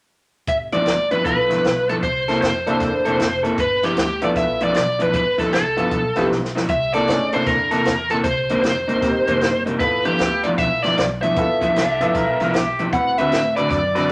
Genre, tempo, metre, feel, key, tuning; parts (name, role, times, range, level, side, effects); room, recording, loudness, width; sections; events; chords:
electric blues shuffle; 154 BPM; 4/4; swing 64% on 8ths; G mixolydian; A4 = 441 Hz
biting lead guitar; melody; 0.5-14.1 s; G4 to F#5; -22 LUFS; equal; overdrive
upright bass; bass; 0.5-14.1 s; F1 to A2; -34 LUFS; equal
compact cocktail drum kit; drums; 0.5-14.1 s; hi-hat, kick drum, snare drum; -29 LUFS; equal
electric guitar through a small old amp; riff; 0.7-14.1 s; G2 to B4; -25 LUFS; equal
clear upright piano; accompaniment; 1.2-14.0 s; A3 to B4; -28 LUFS; equal
overdriven slide guitar; second line; 11.8-12.9 s; F4 to D5; -27 LUFS; equal
moderate studio reverb, RT60 0.7 s; -19 LUFS; mono
0.5-14.1 A section
drum fill 6.3-6.7
0.5 G13; 2.0 C13; 3.6 G13; 6.7 C13; 8.3 Cm7; 9.8 G13; 12.9 D13